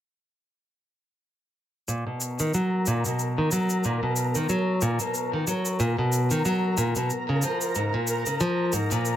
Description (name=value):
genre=folktronica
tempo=92 BPM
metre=4/4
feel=swing 56% on 16ths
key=B lydian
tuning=A4 = 440 Hz
part: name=picked plugged-in steel-string acoustic guitar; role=arpeggios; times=1.9-9.2 s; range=G#2 to F#3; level=-24 LUFS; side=equal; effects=low-pass filter, ping-pong delay
part: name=shaker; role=drums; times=1.9-9.2 s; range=none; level=-32 LUFS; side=equal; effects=none
part: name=flickering grainy texture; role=texture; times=2.3-9.2 s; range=A#4 to A#5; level=-31 LUFS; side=left 1 dB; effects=built-in reverb
room=wet small room reverb, RT60 0.5 s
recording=none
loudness=-23 LUFS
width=side -11 dB against mid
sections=1.9-9.2 A section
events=none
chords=1.9 Bmaj7; 7.1 A#m7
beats=| 1.89 2.54 3.19 3.84 | 4.49 5.14 5.80 6.45 | 7.10 7.75 8.41 9.06